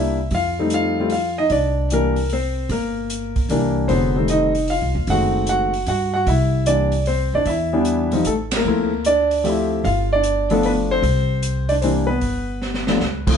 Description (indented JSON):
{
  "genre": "jazz piano trio",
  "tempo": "151 BPM",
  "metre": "3/4",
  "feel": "swing 67% on 8ths",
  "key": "C mixolydian",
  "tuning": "A4 = 440 Hz",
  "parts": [
    { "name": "warm concert grand piano", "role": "melody", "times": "0.0-13.4 s", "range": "D2 to F#5", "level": "-19 LUFS", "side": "left 1 dB", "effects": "none" },
    { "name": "upright bass", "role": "bass", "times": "0.0-13.4 s", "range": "F1 to G2", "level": "-23 LUFS", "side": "equal", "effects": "none" },
    { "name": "open jazz drum kit", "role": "drums", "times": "0.3-13.3 s", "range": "crash cymbal, hi-hat, kick drum, ride cymbal, snare drum", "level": "-27 LUFS", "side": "right 2 dB", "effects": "none" }
  ],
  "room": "wet studio reverb, RT60 0.9 s",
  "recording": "band playing live in one room, nothing above 10.5 kHz",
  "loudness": "-17 LUFS",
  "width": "side -7 dB against mid",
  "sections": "0.0-13.4 A section",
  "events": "band accent 8.5; drum fill 12.6-13.0",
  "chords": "0.3 F9; 1.5 C7sus2; 2.7 Gm; 3.5 C9; 3.9 F9; 5.1 F#dim7; 6.3 C9; 7.5 Em7; 8.3 N.C.; 8.7 Dm7; 9.8 G9; 11.0 Csus2; 12.2 G",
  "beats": "| 0.31 0.71 1.11 | 1.50 1.90 2.30 | 2.70 3.10 3.50 | 3.89 4.29 4.69 | 5.08 5.48 5.88 | 6.28 6.67 7.07 | 7.47 7.86 8.26 | 8.65 9.05 9.45 | 9.84 10.24 10.63 | 11.03 11.42 11.82 | 12.21 12.61 13.00"
}